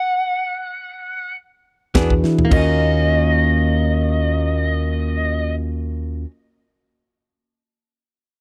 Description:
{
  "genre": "straight-eighth soul blues",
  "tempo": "free time",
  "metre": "none",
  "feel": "none",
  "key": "Eb minor",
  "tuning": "A4 = 438 Hz",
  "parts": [
    { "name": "overdriven slide guitar", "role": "melody", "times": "0.0-5.5 s", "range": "Eb5 to Gb5", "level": "-24 LUFS", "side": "equal", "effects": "none" },
    { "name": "tine electric piano", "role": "accompaniment", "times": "1.9-6.2 s", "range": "Db4 to B4", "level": "-27 LUFS", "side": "equal", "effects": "analog chorus" },
    { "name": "direct-recorded clean electric guitar", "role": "stabs", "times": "1.9-6.3 s", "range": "E3 to G#4", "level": "-30 LUFS", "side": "equal", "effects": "none" },
    { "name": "tight funk drum kit", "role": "drums", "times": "1.9-2.7 s", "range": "crash cymbal, hi-hat, kick drum, snare drum, toms", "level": "-20 LUFS", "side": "equal", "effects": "none" },
    { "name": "fingered electric bass", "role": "bass", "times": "2.0-6.2 s", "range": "Eb2 to E3", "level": "-21 LUFS", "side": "equal", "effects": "none" }
  ],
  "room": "small room reverb",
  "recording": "dry, close 1970s-style studio recording",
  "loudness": "-19 LUFS",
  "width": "mono",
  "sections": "0.0-2.5 A section; 2.5-4.8 B section",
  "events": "stop 0.0-1.9; drum fill 2.2",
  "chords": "0.0 N.C.; 1.9 E7; 2.5 Ebm7",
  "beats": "free time"
}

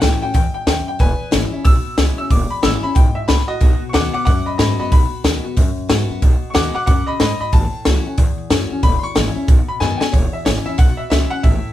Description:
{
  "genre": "rockabilly",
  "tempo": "184 BPM",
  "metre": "4/4",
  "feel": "swing 62% on 8ths",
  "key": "E major",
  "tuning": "A4 = 439 Hz",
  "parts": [
    { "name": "bright upright piano", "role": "melody", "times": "0.0-11.7 s", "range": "F#4 to E6", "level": "-23 LUFS", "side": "left 1 dB", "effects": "none" },
    { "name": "picked steel-string acoustic guitar", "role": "accompaniment", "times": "0.0-11.7 s", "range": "E2 to F#4", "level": "-25 LUFS", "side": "left 4 dB", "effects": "none" },
    { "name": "upright bass", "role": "bass", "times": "0.0-11.7 s", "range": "E1 to G#2", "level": "-19 LUFS", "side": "equal", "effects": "none" },
    { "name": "compact cocktail drum kit", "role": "drums", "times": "0.0-11.5 s", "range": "hi-hat, kick drum, snare drum", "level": "-16 LUFS", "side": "equal", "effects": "none" }
  ],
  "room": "moderate small room reverb, RT60 0.5 s",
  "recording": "band playing live in one room",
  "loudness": "-14 LUFS",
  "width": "side -13 dB against mid",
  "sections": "0.0-10.1 A section; 10.1-11.7 B section",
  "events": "upright piano solo 0.0-10.1; drum fill 9.8-10.1",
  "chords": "0.0 A6; 1.0 E6; 3.6 B6; 7.5 A6; 8.8 E6; 9.5 B6; 10.1 E6",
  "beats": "0.01 0.34 0.67 | 1.00 1.32 1.65 1.98 | 2.30 2.63 2.96 3.29 | 3.61 3.94 4.26 4.59 | 4.92 5.24 5.57 5.90 | 6.22 6.55 6.88 7.20 | 7.53 7.85 8.18 8.51 | 8.83 9.16 9.48 9.81 | 10.13 10.46 10.79 11.11 | 11.44"
}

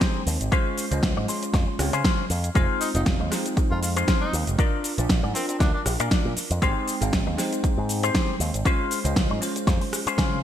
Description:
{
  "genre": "nu-disco, nu disco",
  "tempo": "118 BPM",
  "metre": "4/4",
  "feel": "swing 55% on 16ths",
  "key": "unclear",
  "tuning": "A4 = 441 Hz",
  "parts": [
    { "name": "bell-like tine electric piano", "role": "accompaniment", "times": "0.0-10.4 s", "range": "Ab3 to C6", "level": "-30 LUFS", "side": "right 1 dB", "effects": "analog chorus, ping-pong delay" },
    { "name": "electric guitar with an envelope filter", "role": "riff", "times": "0.0-10.4 s", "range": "Db4 to D5", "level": "-30 LUFS", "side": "left 6 dB", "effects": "wide subtle chorus" },
    { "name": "electronic kick drum", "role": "drums", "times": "0.0-10.3 s", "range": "none", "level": "-23 LUFS", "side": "equal", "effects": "overdrive" },
    { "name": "pop drum kit", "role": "drums", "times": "0.0-10.3 s", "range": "hi-hat, rim click, shaker, snare drum", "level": "-28 LUFS", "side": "equal", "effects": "overdrive, gated reverb" },
    { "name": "picked electric bass with an envelope filter", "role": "bass", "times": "0.3-10.4 s", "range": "F1 to Db3", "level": "-27 LUFS", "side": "equal", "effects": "sidechain pumping" },
    { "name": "breathy tenor saxophone", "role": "melody", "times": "2.8-5.8 s", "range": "C4 to F4", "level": "-34 LUFS", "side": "left 1 dB", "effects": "ping-pong delay" }
  ],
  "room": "light reverb",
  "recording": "bright 1980s-style digital production",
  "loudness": "-21 LUFS",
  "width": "side -10 dB against mid",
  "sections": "0.0-10.4 A section",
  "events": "none",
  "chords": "0.0 Abmaj7; 0.5 Dbmaj7; 2.6 Fm7; 4.6 Bb; 6.6 Abmaj7; 8.7 Dbmaj7",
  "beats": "0.01 | 0.52 1.03 1.54 2.05 | 2.56 3.06 3.57 4.08 | 4.59 5.10 5.61 6.12 | 6.62 7.13 7.64 8.15 | 8.66 9.17 9.68 10.18"
}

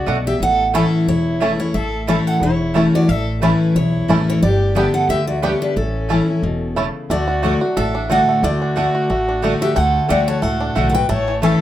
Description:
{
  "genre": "bluegrass",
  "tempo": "180 BPM",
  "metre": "4/4",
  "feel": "swing 55% on 8ths",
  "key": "unclear",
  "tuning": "A4 = 440 Hz",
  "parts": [
    { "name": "picked steel-string acoustic guitar", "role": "melody", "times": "0.0-11.6 s", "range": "A4 to A5", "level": "-22 LUFS", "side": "right 1 dB", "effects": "none" },
    { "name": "dark fiddle", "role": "second line", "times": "0.0-11.6 s", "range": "C#4 to D5", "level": "-24 LUFS", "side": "left 1 dB", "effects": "none" },
    { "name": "picked steel-string acoustic guitar", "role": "accompaniment", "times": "0.0-11.6 s", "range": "E2 to G4", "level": "-19 LUFS", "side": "left 2 dB", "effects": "none" },
    { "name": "upright bass", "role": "bass", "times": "0.0-11.5 s", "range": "E1 to D2", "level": "-23 LUFS", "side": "right 1 dB", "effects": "none" },
    { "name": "bluegrass banjo", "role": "melody", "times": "0.1-11.6 s", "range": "E3 to A4", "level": "-24 LUFS", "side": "right 2 dB", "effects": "none" },
    { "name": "mandolin", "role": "stabs", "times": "0.1-11.5 s", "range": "A3 to A5", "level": "-23 LUFS", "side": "right 4 dB", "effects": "none" }
  ],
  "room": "wet small room reverb, RT60 0.6 s",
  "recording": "none",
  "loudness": "-15 LUFS",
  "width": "side -12 dB against mid",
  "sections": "0.0-7.1 A section; 7.1-11.6 A section",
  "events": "none",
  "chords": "0.4 A; 4.4 G; 5.8 A; 7.1 D; 11.1 A",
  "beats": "0.07 | 0.41 0.74 1.08 1.41 | 1.75 2.08 2.42 2.75 | 3.08 3.42 3.75 4.09 | 4.42 4.76 5.09 5.42 | 5.76 6.09 6.43 6.76 | 7.09 7.43 7.76 8.10 | 8.43 8.76 9.10 9.43 | 9.76 10.10 10.43 10.76 | 11.10 11.43"
}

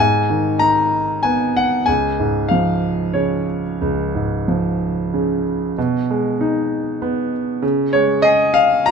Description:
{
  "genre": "classical, lyrical solo piano",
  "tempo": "94 BPM",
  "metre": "3/4",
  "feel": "uneven beats, rubato",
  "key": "unclear",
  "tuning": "A4 = 441 Hz",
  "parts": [
    { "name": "clear concert grand piano", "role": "solo", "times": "0.0-8.9 s", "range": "C#2 to A#5", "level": "-16 LUFS", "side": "equal", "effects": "none" }
  ],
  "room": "light reverb",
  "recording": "close, detailed microphones",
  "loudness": "-16 LUFS",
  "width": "side -6 dB against mid",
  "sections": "0.0-8.9 A section",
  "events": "none",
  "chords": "0.0 G#m; 1.9 C#; 5.8 G#m/B; 7.6 C#",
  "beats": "0.61 1.25 | 1.88 2.50 3.15 | 3.81 4.48 5.13 | 5.77 6.40 7.02 | 7.63 8.24 8.86"
}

